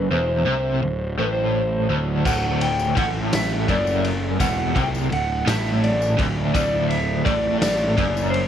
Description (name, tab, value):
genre	psychedelic rock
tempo	56 BPM (dotted quarters)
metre	6/8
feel	straight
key	D mixolydian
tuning	A4 = 442 Hz
part	electric slide guitar	melody	0.0-8.4 s	B4 to G5	-24 LUFS	equal	tape echo
part	string machine, cellos	sustained chords	0.0-8.5 s	F#3 to A4	-35 LUFS	right 12 dB	none
part	crunchy overdriven guitar	riff	0.0-8.5 s	D2 to C3	-23 LUFS	equal	tremolo
part	fuzz picked electric bass	bass	0.0-8.5 s	D1 to C2	-26 LUFS	equal	overdrive
part	raw garage drum kit	drums	2.3-8.5 s	crash cymbal, kick drum, ride cymbal, snare drum	-26 LUFS	equal	none
part	tambourine	percussion	2.3-8.3 s	none	-40 LUFS	left 15 dB	none
room	light reverb, small room ambience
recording	1960s-style stereo with parts hard left and right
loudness	-19 LUFS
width	side -9 dB against mid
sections	0.0-8.5 A section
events	none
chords	0.0 D